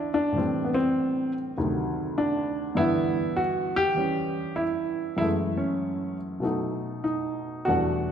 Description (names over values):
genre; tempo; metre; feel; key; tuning
solo jazz; 98 BPM; 4/4; swing 67% on 8ths, rubato; unclear; A4 = 440 Hz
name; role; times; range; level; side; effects
warm baby grand piano; solo; 0.0-8.1 s; D2 to F#5; -24 LUFS; equal; none
room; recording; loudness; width
wet concert hall reverb, RT60 2.2 s; recorded in a church or concert hall; -24 LUFS; side -8 dB against mid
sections
0.0-8.1 A section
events
none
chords
0.4 Am7; 1.6 D7b9; 2.8 G6; 5.2 F#m9; 6.4 B7